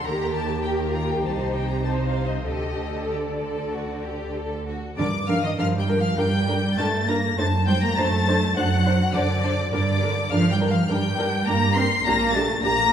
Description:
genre	quick classical-period movement for string orchestra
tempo	101 BPM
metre	4/4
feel	rubato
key	G minor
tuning	A4 = 441 Hz
part	warm symphonic violin section	melody	0.0-12.9 s	D5 to C7	-29 LUFS	left 4 dB	none
part	rich symphonic violin section	second line	0.0-12.9 s	Eb4 to C6	-28 LUFS	left 3 dB	none
part	rich symphonic viola section	accompaniment	0.0-12.7 s	D4 to C5	-28 LUFS	equal	none
part	rich symphonic cello section	bass	0.0-12.9 s	C3 to C4	-27 LUFS	right 2 dB	none
part	rich symphonic double bass section	bass	0.0-12.9 s	Bb1 to G2	-26 LUFS	right 2 dB	none
room	wet recital hall reverb, RT60 1.6 s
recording	heard from further back in the room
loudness	-20 LUFS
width	side -9 dB against mid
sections	0.0-5.0 A section; 5.0-12.9 B section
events	none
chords	0.0 Eb; 1.2 Cm6; 2.5 Dsus4; 5.0 Gm; 7.4 D7/F#; 9.7 Gm; 12.0 Gm/Bb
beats	| 0.04 0.63 1.23 1.84 | 2.46 3.10 3.73 4.35 | 4.97 5.57 6.17 6.77 | 7.37 7.96 8.55 9.14 | 9.72 10.30 10.88 11.46 | 12.04 12.63

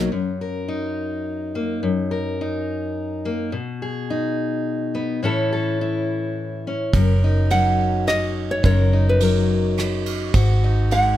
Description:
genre	acoustic folk-pop ballad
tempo	106 BPM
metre	3/4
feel	straight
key	F# major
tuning	A4 = 440 Hz
part	fingerpicked steel-string acoustic guitar	accompaniment	0.0-11.2 s	F#2 to A#4	-22 LUFS	left 2 dB	none
part	vintage muted fingered electric bass	bass	0.0-0.1, 6.9-11.2 s	F#1 to G#1	-19 LUFS	equal	none
part	soft brush drum kit	drums	6.9-11.0 s	kick drum, ride cymbal, rim click	-25 LUFS	right 2 dB	none
part	nylon-string guitar	melody	7.5-11.2 s	A#4 to F#5	-21 LUFS	right 1 dB	none
room	little or no reverb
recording	close, detailed microphones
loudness	-19 LUFS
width	side -13 dB against mid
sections	0.1-6.9 A section; 6.9-11.2 B section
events	none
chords	0.1 F#6; 3.5 B6; 5.2 A; 6.9 F#6; 10.3 G#5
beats	| 0.11 0.68 1.25 | 1.82 2.39 2.95 | 3.52 4.09 4.66 | 5.23 5.80 6.37 | 6.94 7.51 8.07 | 8.64 9.21 9.78 | 10.34 10.91

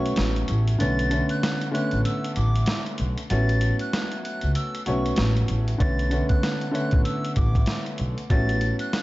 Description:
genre	hip hop, boom-bap hip-hop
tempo	96 BPM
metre	4/4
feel	swing 59% on 16ths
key	B minor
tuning	A4 = 440 Hz
part	bright reedy silver concert flute	melody	0.0-9.0 s	C#6 to A6	-32 LUFS	equal	high-pass filter, low-pass filter, digital delay
part	dark grand piano	accompaniment	0.0-9.0 s	D3 to C#4	-27 LUFS	equal	cassette tape, high-pass filter, low-pass filter
part	upright bass	bass	0.0-8.7 s	A1 to C#2	-24 LUFS	equal	none
part	lo-fi sampler-style drum kit	drums	0.1-9.0 s	hi-hat, kick drum, snare drum	-27 LUFS	equal	none
room	light reverb, studio reverb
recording	dark, warm production, vinyl crackle, nothing above 7.8 kHz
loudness	-21 LUFS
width	side -18 dB against mid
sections	0.0-9.0 A section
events	break 0.0-5.8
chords	0.0 A69; 0.8 Bm9; 3.3 A69; 5.8 Bm9; 8.3 A69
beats	0.17 | 0.80 1.43 2.05 2.67 | 3.30 3.92 4.55 5.17 | 5.80 6.42 7.05 7.67 | 8.30 8.93

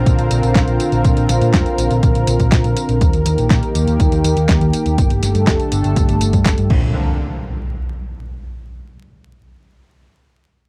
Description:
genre	italo disco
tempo	122 BPM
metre	4/4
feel	straight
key	Bb major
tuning	A4 = 440 Hz
part	lush unison pad	sustained chords	0.0-6.9 s	D3 to Bb4	-22 LUFS	equal	chorus
part	hollow-body short-scale picked electric bass	bass	0.0-6.9 s	F1 to Bb2	-19 LUFS	equal	none
part	clean 12-bit digital drum machine	drums	0.1-6.8 s	crash cymbal, handclaps, hi-hat, snare drum, tambourine	-24 LUFS	equal	small room ambience
part	electronic kick drum	drums	0.1-6.8 s	none	-19 LUFS	equal	overdrive, small room ambience
part	impact	sound effects	6.7-8.7 s	none	-26 LUFS	equal	none
room	little or no reverb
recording	dry, close 1970s-style studio recording, vinyl crackle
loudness	-16 LUFS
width	mono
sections	0.0-6.9 A section; 6.9-8.9 B section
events	filter sweep on analog synth pad 0.0-6.9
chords	0.0 Bbadd9; 3.0 Eb; 5.0 Gsus2; 6.7 Bbadd9; 6.9 N.C.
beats	0.06 0.55 | 1.04 1.54 2.03 2.52 | 3.01 3.50 4.00 4.49 | 4.98 5.47 5.96 6.46 | 6.95 7.44 7.93 8.42

